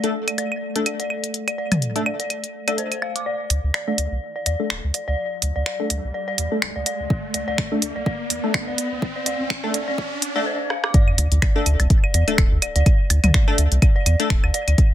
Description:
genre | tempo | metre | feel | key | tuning
minimal techno | 125 BPM | 4/4 | swing 56% on 16ths | unclear | A4 = 440 Hz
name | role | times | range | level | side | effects
wavetable chord stab | stabs | 0.0-14.3 s | A3 to A4 | -26 LUFS | left 2 dB | tape echo
minimal click drum kit | drums | 0.0-14.9 s | finger snaps, hi-hat, rim click | -23 LUFS | right 1 dB | high-pass filter on hats, soft clipping on snare, high-pass filter on snare
pulsing gated texture | texture | 0.0-3.3 s | A3 to A4 | -32 LUFS | left 2 dB | chorus, built-in reverb, sidechain pumping
dark detuned synth bell | riff | 0.3-14.6 s | C5 to D6 | -28 LUFS | left 1 dB | chorus, sidechain pumping, low-pass filter, tape echo
electronic claves, woodblock and toms | percussion | 0.3-3.1, 11.1-14.8 s | none | -24 LUFS | equal | overdrive, tape echo
riser and sub drop | sound effects | 5.1-12.9 s | none | -30 LUFS | right 1 dB | none
rubbery square bass | bass | 3.5-14.7 s | D1 to E2 | -20 LUFS | equal | sidechain pumping
electronic kick drum | drums | 7.1-14.9 s | none | -17 LUFS | equal | none
room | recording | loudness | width
light reverb | dense, heavily limited modern master, high-pass filter | -19 LUFS | side -12 dB against mid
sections
0.0-3.3 A section; 3.3-10.9 B section; 10.9-14.9 C section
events
build-up 3.3-10.9; filter sweep on synth bell 3.3-10.9; filter sweep on synth stab 3.3-10.9; riser 5.1-10.5; drum fill 10.7; drop 10.9-14.9; impact 10.9-12.9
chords
0.0 D5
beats
0.38 0.86 | 1.34 1.82 2.30 2.78 | 3.26 3.74 4.22 4.70 | 5.18 5.66 6.14 6.62 | 7.10 7.58 8.06 8.54 | 9.02 9.50 9.98 10.46 | 10.94 11.42 11.90 12.38 | 12.86 13.34 13.82 14.30 | 14.78

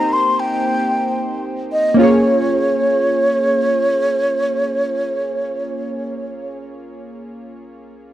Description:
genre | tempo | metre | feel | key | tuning
amapiano | free time | none | none | Bb dorian | A4 = 439 Hz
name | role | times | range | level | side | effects
mellow hollow concert flute | melody | 0.0-6.6 s | Db5 to C6 | -18 LUFS | right 1 dB | tape echo, plate reverb
warm analog keys | accompaniment | 0.0-8.1 s | Bb3 to Db5 | -20 LUFS | equal | chorus, plate reverb
room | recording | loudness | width
moderate studio reverb, RT60 0.5 s | cassette tape | -15 LUFS | side -12 dB against mid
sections
0.0-2.0 A section; 2.0-6.2 B section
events
drop 0.0-2.0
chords
0.0 Cm7; 2.0 Bbm7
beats
free time

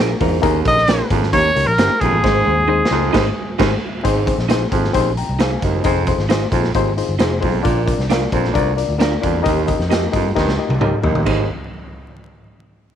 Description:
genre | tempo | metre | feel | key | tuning
uptempo 1960s-style soul | 133 BPM | 4/4 | straight | Ab major | A4 = 440 Hz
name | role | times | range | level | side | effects
reed electric piano | accompaniment | 0.0-11.5 s | Ab3 to Bb5 | -21 LUFS | left 10 dB | none
electric guitar through a small old amp | stabs | 0.0-11.4 s | Db4 to C5 | -23 LUFS | right 10 dB | none
vintage muted picked electric bass | bass | 0.0-11.5 s | F1 to G2 | -21 LUFS | equal | none
clear baritone saxophone | riff | 0.2-11.5 s | D2 to Bb2 | -22 LUFS | right 11 dB | none
raw garage drum kit | drums | 0.2-11.4 s | crash cymbal, hi-hat, kick drum, snare drum, toms | -20 LUFS | equal | none
clear trumpet | melody | 0.7-3.6 s | Ab4 to Eb5 | -16 LUFS | equal | none
room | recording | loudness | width
small room reverb | 1960s-style stereo with parts hard left and right, vinyl crackle | -14 LUFS | side -9 dB against mid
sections
0.0-4.0 A section; 4.0-11.3 B section; 11.3-13.0 C section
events
drum fill 2.2-4.0, 10.4-11.3; band accent 3.1-4.0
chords
0.4 Eb7sus4; 1.3 Eb7; 2.2 Ab; 5.8 Fm7; 7.7 Bb; 9.5 Eb; 11.3 Ab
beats
| 0.43 0.88 1.33 1.78 | 2.23 2.69 3.14 3.59 | 4.04 4.49 4.94 5.39 | 5.84 6.29 6.75 7.20 | 7.65 8.10 8.55 9.01 | 9.46 9.91 10.36 10.82 | 11.27

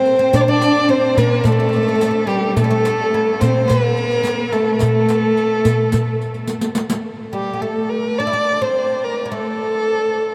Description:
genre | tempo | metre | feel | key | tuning
Arabic maqam ensemble | 107 BPM | 4/4 | straight | A maqam bayati | A4 = 440 Hz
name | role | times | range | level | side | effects
dark violin | melody | 0.0-10.3 s | G4 to D5 | -20 LUFS | equal | none
clear cello | second line | 0.0-6.5 s | G3 to D4 | -24 LUFS | equal | none
oud | second line | 0.0-10.3 s | G3 to E4 | -27 LUFS | equal | none
riq | percussion | 0.1-7.0 s | none | -29 LUFS | equal | none
darbuka | percussion | 0.3-7.0 s | none | -23 LUFS | equal | none
room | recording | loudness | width
wet huge ambient reverb, RT60 8.1 s | in a vast, echoing space | -17 LUFS | mono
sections
0.0-7.1 A section; 7.1-10.3 B section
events
drum fill 6.5-7.1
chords
none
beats
| 0.33 0.89 1.45 2.01 | 2.57 3.13 3.69 4.25 | 4.81 5.37 5.93 6.50 | 7.06 7.62 8.18 8.74 | 9.30 9.87

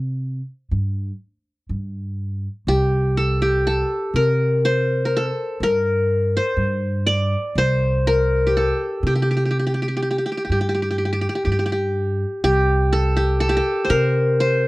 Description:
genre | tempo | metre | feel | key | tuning
turkish | 123 BPM (eighths) | 10/8 | straight | C makam nikriz | A4 = 440 Hz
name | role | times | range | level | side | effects
qanun | melody | 0.0-14.7 s | G4 to D5 | -20 LUFS | left 1 dB | none
upright bass | bass | 0.0-14.7 s | C2 to C3 | -21 LUFS | equal | none
room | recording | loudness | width
light reverb | dry, close 1970s-style studio recording | -18 LUFS | side -20 dB against mid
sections
0.0-2.7 A section; 2.7-14.7 B section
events
none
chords
none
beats
0.23 0.71 1.21 1.70 2.18 | 2.67 3.16 3.65 4.14 4.63 5.12 5.61 6.10 6.59 7.08 | 7.56 8.05 8.54 9.03 9.52 10.01 10.49 10.98 11.47 11.96 | 12.45 12.94 13.42 13.91 14.40

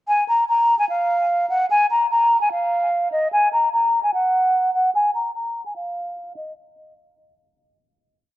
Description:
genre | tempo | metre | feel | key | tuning
hip hop | 148 BPM | 4/4 | half-time | unclear | A4 = 440 Hz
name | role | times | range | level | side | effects
mellow hollow silver concert flute | solo | 0.1-6.5 s | Eb5 to Bb5 | -17 LUFS | equal | low-pass filter, tape echo
room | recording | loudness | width
light reverb, small room ambience | dark, warm production, low-pass filter | -17 LUFS | side -16 dB against mid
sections
0.1-6.6 breakdown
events
filter sweep 0.1-6.6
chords
none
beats
| 0.08 0.49 0.89 1.30 | 1.70 2.11 2.52 2.92 | 3.33 3.73 4.14 4.54 | 4.95 5.35 5.76 6.16

